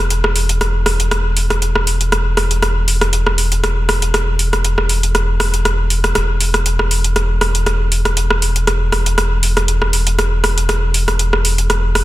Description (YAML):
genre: afro house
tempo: 119 BPM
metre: 4/4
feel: swing 54% on 16ths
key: unclear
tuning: A4 = 441 Hz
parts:
  - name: round analog bass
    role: bass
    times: 0.0-12.0 s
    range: E1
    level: -16 LUFS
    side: equal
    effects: none
  - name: deep house drum kit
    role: drums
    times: 0.1-12.0 s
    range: hi-hat, rim click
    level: -16 LUFS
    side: equal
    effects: soft clipping on snare
room: light reverb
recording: dense, heavily limited modern master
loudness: -13 LUFS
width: side -16 dB against mid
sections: 0.0-12.0 A section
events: none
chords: none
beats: | 0.11 0.61 1.11 1.62 | 2.12 2.63 3.13 3.64 | 4.14 4.64 5.15 5.65 | 6.16 6.66 7.17 7.67 | 8.17 8.68 9.18 9.69 | 10.19 10.70 11.20 11.70